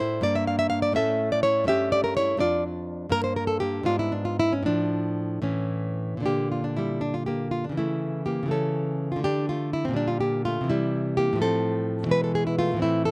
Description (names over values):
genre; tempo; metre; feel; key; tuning
classical, baroque-style dance for nylon-string guitar; 72-88 BPM (dotted quarters); 6/8; rubato; unclear; A4 = 440 Hz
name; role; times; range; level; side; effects
nylon-string guitar; solo; 0.0-13.1 s; F2 to F5; -23 LUFS; equal; none
room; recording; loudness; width
little or no reverb; recorded outdoors, with no room sound; -23 LUFS; side -28 dB against mid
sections
0.0-6.3 A section; 6.3-13.1 B section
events
none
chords
0.2 Gm; 0.9 A; 1.7 A7/G; 2.4 Dm/F; 3.1 Gmadd9; 3.9 G#dim; 4.7 Dm/A; 5.4 A; 6.3 Bb; 7.8 A/C#; 9.2 D5; 10.7 C; 11.4 F/A; 12.1 E/B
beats
| 0.23 0.94 | 1.67 2.40 | 3.12 3.86 | 4.65 5.45 | 6.25 7.02 | 7.77 8.51 | 9.24 9.96 | 10.70 11.41 | 12.12 12.81